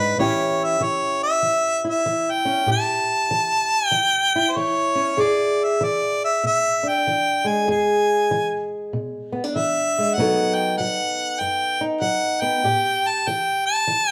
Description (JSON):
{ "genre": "acoustic country blues, solo or duo", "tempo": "96 BPM", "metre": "4/4", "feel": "swing 63% on 8ths", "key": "E mixolydian", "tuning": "A4 = 440 Hz", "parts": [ { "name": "warm harmonica", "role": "melody", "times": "0.0-14.1 s", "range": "B4 to A5", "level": "-22 LUFS", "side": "equal", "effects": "none" }, { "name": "fingerpicked old ladder-braced acoustic guitar", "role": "accompaniment", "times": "0.0-14.1 s", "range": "E2 to A4", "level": "-26 LUFS", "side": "equal", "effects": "none" } ], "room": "moderate large studio reverb, RT60 0.9 s", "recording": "band playing live in one room", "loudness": "-21 LUFS", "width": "mono", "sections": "0.0-14.1 A section", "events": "none", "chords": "0.2 A7; 5.2 E7; 10.2 B7; 12.6 A7(no3)", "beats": "| 0.19 0.82 1.44 2.07 | 2.69 3.31 3.94 4.56 | 5.18 5.80 6.43 7.05 | 7.67 8.29 8.91 9.53 | 10.15 10.78 11.40 12.02 | 12.64 13.26 13.88" }